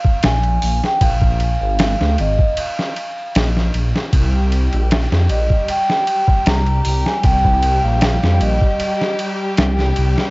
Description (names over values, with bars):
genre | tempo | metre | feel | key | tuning
trip hop | 77 BPM | 4/4 | straight | C minor | A4 = 437 Hz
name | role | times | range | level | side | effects
vibraphone with soft mallets | melody | 0.0-9.2 s | Eb5 to Bb5 | -21 LUFS | right 1 dB | dub echo
trip hop sampler-style drum kit | drums | 0.0-10.3 s | hi-hat, kick drum, ride cymbal, snare drum | -19 LUFS | equal | none
dark detuned saw bass | bass | 0.2-10.2 s | Ab1 to F2 | -16 LUFS | equal | none
muted studio string section | sustained chords | 4.1-10.3 s | G3 to G4 | -24 LUFS | left 1 dB | none
room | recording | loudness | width
little or no reverb | worn, warbling old tape, cassette tape, warbly pitch drift, nothing above 7.7 kHz | -14 LUFS | side -24 dB against mid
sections
0.0-10.3 A section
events
none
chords
0.0 Bb7(no3); 4.1 C7(no3)